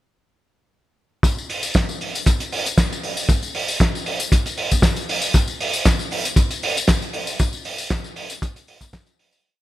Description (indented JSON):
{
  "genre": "nu-disco",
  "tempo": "117 BPM",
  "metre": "4/4",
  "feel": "swing 54% on 16ths",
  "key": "none",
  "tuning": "none",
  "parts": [
    { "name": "cloth-damped thuddy drum kit", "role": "drums", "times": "1.2-9.4 s", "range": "cabasa, hi-hat, snare drum", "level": "-22 LUFS", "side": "right 1 dB", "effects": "none" },
    { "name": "kick drum", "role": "drums", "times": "1.2-9.0 s", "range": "none", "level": "-18 LUFS", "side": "equal", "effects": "none" },
    { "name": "tambourine", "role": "percussion", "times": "1.2-9.4 s", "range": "none", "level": "-28 LUFS", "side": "left 5 dB", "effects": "none" }
  ],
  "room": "light reverb, small room ambience",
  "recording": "bright 1980s-style digital production",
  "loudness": "-18 LUFS",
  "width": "side -15 dB against mid",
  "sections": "1.2-9.4 drop",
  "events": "drop 1.2-9.4; fade-out 6.7-9.4",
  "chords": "none"
}